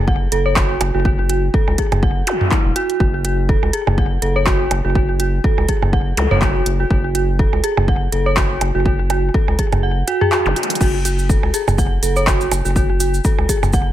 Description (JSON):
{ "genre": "minimal techno", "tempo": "123 BPM", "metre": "4/4", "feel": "swing 56% on 16ths", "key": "F# minor", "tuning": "A4 = 436 Hz", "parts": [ { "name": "round analog bass", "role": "bass", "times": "0.0-13.9 s", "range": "E1 to C#2", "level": "-20 LUFS", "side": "equal", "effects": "sidechain pumping" }, { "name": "dark detuned synth bell", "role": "riff", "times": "0.1-13.8 s", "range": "E4 to F#5", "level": "-20 LUFS", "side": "right 1 dB", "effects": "chorus, tremolo, sidechain pumping, ping-pong delay" }, { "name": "electronic kick drum", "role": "drums", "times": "0.1-13.8 s", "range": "none", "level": "-18 LUFS", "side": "equal", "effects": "overdrive" }, { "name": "house drum kit", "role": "drums", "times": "0.3-13.6 s", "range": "crash cymbal, handclaps, hi-hat", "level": "-22 LUFS", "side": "equal", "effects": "overdrive" }, { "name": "electronic percussion blips and toms", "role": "percussion", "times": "0.8-13.7 s", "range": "none", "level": "-22 LUFS", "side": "right 3 dB", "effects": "ping-pong delay" }, { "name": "zap", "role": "sound effects", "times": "2.3-2.4, 6.2-6.3, 10.5-10.6 s", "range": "none", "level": "-24 LUFS", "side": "equal", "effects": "none" }, { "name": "cabasa", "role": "percussion", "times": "10.8-13.8 s", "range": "none", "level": "-27 LUFS", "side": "right 4 dB", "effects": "none" } ], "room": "digital ambience", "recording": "none", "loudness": "-14 LUFS", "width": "side -12 dB against mid", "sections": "0.0-13.9 A section", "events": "kick drops out 9.8-10.8; drum fill 10.6", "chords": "0.0 F#5" }